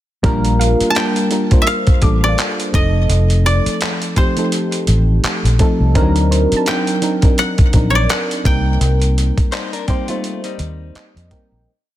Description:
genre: contemporary R&B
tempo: 84 BPM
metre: 4/4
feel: swing 58% on 16ths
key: Bb major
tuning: A4 = 440 Hz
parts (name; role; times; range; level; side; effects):
- mellow FM electric piano; accompaniment; 0.2-11.7 s; Eb3 to G5; -19 LUFS; equal; chorus
- vintage muted fingered electric bass; bass; 0.2-11.6 s; F1 to F2; -15 LUFS; equal; none
- dusty soul sampler-style drum kit; drums; 0.2-11.5 s; handclaps, hi-hat, kick drum; -17 LUFS; equal; soft clipping on snare
- soft round pluck; texture; 0.6-11.0 s; C5 to D6; -30 LUFS; right 2 dB; chorus, digital delay
- koto; melody; 0.9-9.8 s; C5 to A5; -21 LUFS; equal; digital delay
- direct-recorded clean electric guitar; arpeggios; 9.5-11.5 s; G3 to C5; -28 LUFS; left 9 dB; digital delay
room: digital ambience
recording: dense, heavily limited modern master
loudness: -13 LUFS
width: side -14 dB against mid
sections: 0.2-11.7 chorus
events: fade-out 8.8-11.7; FM electric piano fill 10.6-11.7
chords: 0.2 Bb6; 2.7 F7; 6.0 D7b9b13; 8.5 Cm7

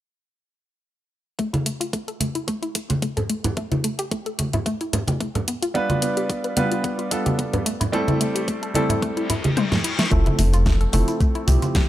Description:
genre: nu-disco, nu disco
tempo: 110 BPM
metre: 4/4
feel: swing 54% on 16ths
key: unclear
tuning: A4 = 440 Hz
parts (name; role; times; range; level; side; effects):
- analog pluck; arpeggios; 1.4-11.8 s; A3 to C5; -28 LUFS; left 2 dB; chorus, sidechain pumping, analog delay
- electronic kick drum; drums; 1.4-11.9 s; none; -23 LUFS; equal; high-pass filter on kick, studio reverb
- pop drum kit; drums; 1.4-11.9 s; hi-hat, snare drum, toms; -26 LUFS; left 1 dB; studio reverb
- congas and maracas; percussion; 1.5-11.9 s; none; -25 LUFS; right 1 dB; none
- clear concert grand piano; accompaniment; 5.7-11.9 s; F3 to B4; -24 LUFS; right 1 dB; sidechain pumping, low-pass filter, analog delay
- reverse cymbal; sound effects; 9.2-10.1 s; none; -29 LUFS; left 3 dB; none
- chorused synth bass; bass; 10.1-11.6 s; F1 to C2; -18 LUFS; equal; none
room: little or no reverb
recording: none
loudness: -20 LUFS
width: side -14 dB against mid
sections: 1.4-10.1 A section; 10.1-11.9 B section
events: filter sweep on synth arpeggio sound 1.4-10.1; reverse cymbal 9.2-10.1; drum fill 9.6-10.1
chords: 1.4 Fmaj7; 3.6 A5; 5.5 G7; 7.7 C6; 10.1 Fmaj7

